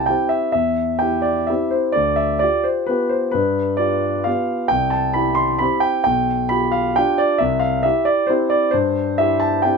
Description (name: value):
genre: classical, piano waltz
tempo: 132 BPM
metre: 3/4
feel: rubato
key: C major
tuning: A4 = 439 Hz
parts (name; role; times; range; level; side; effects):
- warm concert grand piano; solo; 0.0-9.8 s; B1 to C6; -16 LUFS; equal; none
room: light reverb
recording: close, detailed microphones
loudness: -16 LUFS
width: side -5 dB against mid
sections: 0.0-9.8 A section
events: none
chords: 0.0 C; 0.5 C/E; 2.0 G7/D; 4.7 C; 6.1 G7/B; 7.4 C